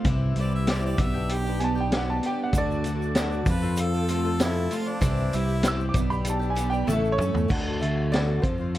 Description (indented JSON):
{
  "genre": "folk rock and heartland rock",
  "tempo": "97 BPM",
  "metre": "4/4",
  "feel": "straight",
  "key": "unclear",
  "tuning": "A4 = 440 Hz",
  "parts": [
    { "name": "warm baby grand piano", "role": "melody", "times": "0.0-8.8 s", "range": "A4 to E6", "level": "-30 LUFS", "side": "right 2 dB", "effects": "none" },
    { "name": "picked twelve-string acoustic guitar", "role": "accompaniment", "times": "0.0-8.8 s", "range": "A2 to A4", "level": "-32 LUFS", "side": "left 5 dB", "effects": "none" },
    { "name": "electric guitar at the edge of break-up", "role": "riff", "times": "0.0-8.8 s", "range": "A2 to G4", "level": "-30 LUFS", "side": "right 2 dB", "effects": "analog chorus" },
    { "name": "fingered electric bass", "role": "bass", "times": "0.0-8.8 s", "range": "A1 to F#2", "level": "-27 LUFS", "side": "equal", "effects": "none" },
    { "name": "vintage drum kit", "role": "drums", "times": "0.0-8.8 s", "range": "crash cymbal, hi-hat, kick drum, snare drum, toms", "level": "-27 LUFS", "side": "equal", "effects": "vintage 12-bit sampler grit" },
    { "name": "clear harmonica", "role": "second line", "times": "0.4-5.6 s", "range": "D4 to E5", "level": "-33 LUFS", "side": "right 2 dB", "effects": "none" },
    { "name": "mellow tonewheel organ", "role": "sustained chords", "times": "2.5-7.5 s", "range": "G4 to D6", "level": "-39 LUFS", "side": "equal", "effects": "slow rotary speaker, chorus vibrato" },
    { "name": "tube shaker", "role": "percussion", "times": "2.5-7.4 s", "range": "none", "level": "-44 LUFS", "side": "right 6 dB", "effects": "none" }
  ],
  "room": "light reverb",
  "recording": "none",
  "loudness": "-22 LUFS",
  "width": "side -14 dB against mid",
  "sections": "0.0-7.5 A section; 7.5-8.8 B section",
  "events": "grand piano solo 0.0-7.5; drum fill 6.9-7.5",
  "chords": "0.1 C; 1.0 G/B; 2.5 D; 3.5 F; 5.0 C; 6.0 G/B; 6.9 A; 7.5 D"
}